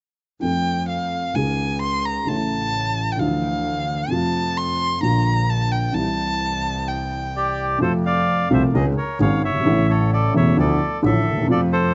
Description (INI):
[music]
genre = tango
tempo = 130 BPM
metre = 4/4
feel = rubato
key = F major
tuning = A4 = 443 Hz
[part]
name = warm violin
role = second line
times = 0.4-7.6 s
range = F5 to C6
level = -26 LUFS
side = equal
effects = slapback echo
[part]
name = dark upright piano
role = accompaniment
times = 0.4-11.9 s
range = E1 to A4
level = -24 LUFS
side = equal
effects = none
[part]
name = clear double bass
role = bass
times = 0.4-11.9 s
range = E1 to F2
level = -28 LUFS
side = equal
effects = none
[part]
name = bandoneon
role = melody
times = 7.4-11.9 s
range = G4 to F5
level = -25 LUFS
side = equal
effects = slapback echo
[sound]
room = little or no reverb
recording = recorded outdoors, with no room sound, nothing above 7.8 kHz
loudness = -21 LUFS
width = mono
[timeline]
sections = 0.4-7.8 A section; 7.8-11.9 B section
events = none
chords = 0.4 F; 1.4 Dbsus2; 2.3 A; 3.2 Dmadd9; 4.1 F; 5.0 Bb; 6.0 C; 7.8 F; 8.7 Dbsus2; 9.7 A; 10.6 Dmadd9